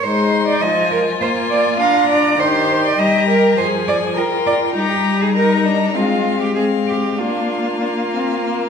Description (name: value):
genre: quick classical-period movement for string quartet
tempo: 101 BPM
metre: 4/4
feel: straight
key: Eb major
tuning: A4 = 443 Hz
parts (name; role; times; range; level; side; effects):
- rich violin; melody; 0.0-8.7 s; F5 to C6; -24 LUFS; left 8 dB; none
- rich violin; second line; 0.0-8.7 s; Bb3 to Bb4; -22 LUFS; left 4 dB; none
- warm viola; accompaniment; 0.0-8.7 s; Eb3 to F4; -20 LUFS; left 2 dB; none
- rich cello; bass; 0.0-8.7 s; Eb4 to F5; -18 LUFS; right 3 dB; none
room: wet recital hall reverb, RT60 1.4 s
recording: recorded in a church or concert hall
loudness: -14 LUFS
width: side -6 dB against mid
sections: 0.0-8.7 A section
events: none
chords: 0.0 Fm7/Ab; 1.2 Bb; 2.4 Eb; 3.6 Bb7/F; 4.8 Eb/G; 6.0 Fm/Ab; 7.2 Bb